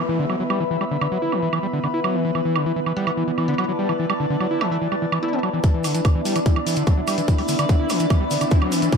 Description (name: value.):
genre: psychedelic trance.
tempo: 146 BPM.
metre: 4/4.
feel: straight.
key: unclear.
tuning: A4 = 440 Hz.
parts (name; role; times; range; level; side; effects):
evolving wavetable pad; sustained chords; 0.0-9.0 s; B3 to D5; -27 LUFS; left 4 dB; phaser, built-in reverb, sidechain pumping.
screaming distorted acid line; riff; 0.0-9.0 s; D3 to E4; -24 LUFS; moving between left 4 dB and right 3 dB; distortion, chorus, auto-pan, cassette tape, sidechain pumping, digital delay.
downlifter and riser; sound effects; 0.0-2.4, 7.3-9.0 s; none; -34 LUFS; equal; none.
airy breathy pad; texture; 0.0-9.0 s; B3 to B5; -26 LUFS; right 1 dB; chorus, phaser, sidechain pumping.
electronic woodblock and hi-hat; drums; 0.3-9.0 s; none; -28 LUFS; right 6 dB; low-pass filter on hats, small room ambience, low-pass filter on perc, low-pass filter on snare.
metallic wobble bass; second line; 3.0-5.4 s; A3 to B3; -37 LUFS; left 4 dB; chorus, cassette tape, sidechain pumping, high-pass filter, dub echo.
electronic kick drum; drums; 5.6-9.0 s; none; -17 LUFS; equal; small room ambience.
maracas; percussion; 5.6-9.0 s; none; -35 LUFS; right 4 dB; none.
room: moderate digital room reverb, RT60 1.1 s, digital ambience.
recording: dark, warm production.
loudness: -19 LUFS.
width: side -6 dB against mid.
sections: 0.0-5.6 A section; 5.6-9.0 B section.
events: filter sweep on ambient pad 0.0-5.6; build-up 5.6-9.0.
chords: 0.0 E5.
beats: 0.29 | 0.71 1.12 1.53 1.94 | 2.35 2.76 3.17 3.58 | 3.99 4.41 4.82 5.23 | 5.64 6.05 6.46 6.87 | 7.28 7.69 8.10 8.51 | 8.93.